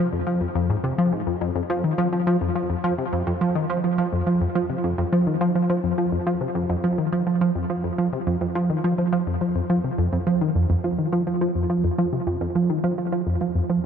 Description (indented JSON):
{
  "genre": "ambient",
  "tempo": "105 BPM",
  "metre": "4/4",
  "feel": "straight",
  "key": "unclear",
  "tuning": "A4 = 444 Hz",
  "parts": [
    { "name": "tight sequenced synth", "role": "solo", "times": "0.0-13.8 s", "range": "F2 to F3", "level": "-20 LUFS", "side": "equal", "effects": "chorus, analog delay" }
  ],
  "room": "moderate huge ambient reverb, RT60 8.0 s",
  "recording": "none",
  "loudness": "-20 LUFS",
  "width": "side -7 dB against mid",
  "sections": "0.0-10.6 A section; 10.6-13.9 B section",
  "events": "none",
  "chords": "none"
}